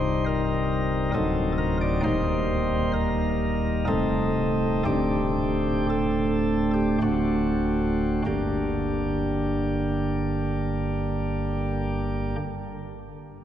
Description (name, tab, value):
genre	classical, chorale-style piece for pipe organ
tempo	48-69 BPM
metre	3/4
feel	rubato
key	G minor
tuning	A4 = 441 Hz
part	chamber organ, sparkling flutes	solo	0.0-12.4 s	C1 to D5	-23 LUFS	equal	none
room	wet cathedral reverb, RT60 5.1 s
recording	heard from further back in the room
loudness	-23 LUFS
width	side -10 dB against mid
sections	0.0-8.3 A section; 8.3-12.0 B section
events	slowing down 0.7-8.3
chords	0.0 Cm; 1.1 D7b9; 2.0 Eb; 3.9 Adim/C; 4.9 D7sus4; 8.3 Gm